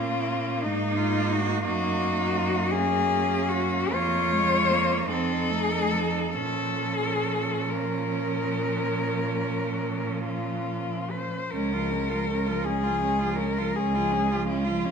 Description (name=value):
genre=classical, lyrical piece for cello ensemble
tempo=44-59 BPM (dotted quarters)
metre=12/8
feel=rubato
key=Bb minor, Db major from 11.5 s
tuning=A4 = 436 Hz
part: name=rich cello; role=melody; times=0.0-14.9 s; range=Eb4 to Db5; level=-27 LUFS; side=left 5 dB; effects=none
part: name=rich cello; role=second line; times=0.0-14.9 s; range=Db4 to Gb4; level=-31 LUFS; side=right 8 dB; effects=none
part: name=warm cello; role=accompaniment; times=0.0-14.9 s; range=F3 to C4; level=-32 LUFS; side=equal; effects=none
part: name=clear cello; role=bass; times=0.0-14.9 s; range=Db2 to Bb2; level=-30 LUFS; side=right 3 dB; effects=none
room=wet recital hall reverb, RT60 1.5 s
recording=minimal, uncompressed stereo recording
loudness=-24 LUFS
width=side -6 dB against mid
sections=0.0-11.5 A section; 11.5-14.9 B section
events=none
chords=0.0 Eb5/Bb; 1.7 Gb; 3.9 Bbm/F; 5.1 F7; 6.3 Bbm; 11.5 Db